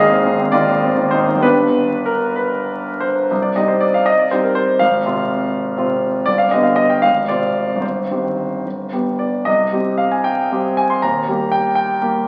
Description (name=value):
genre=classical, romantic character piece for solo piano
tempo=62-84 BPM (dotted quarters)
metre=6/8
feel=rubato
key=C minor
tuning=A4 = 440 Hz
part: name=clear concert grand piano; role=solo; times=0.0-12.3 s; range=G1 to C6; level=-17 LUFS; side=equal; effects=none
room=wet recital hall reverb, RT60 1.5 s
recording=very old 78 rpm record, vinyl crackle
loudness=-17 LUFS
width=mono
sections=0.0-3.3 A section; 3.3-12.3 B section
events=none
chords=0.0 Ab; 1.4 G; 3.3 Cm; 4.8 Fm/Ab; 6.3 G; 7.0 Fm/Ab; 7.8 Cm/G; 8.7 G; 9.5 Cm; 11.0 Eb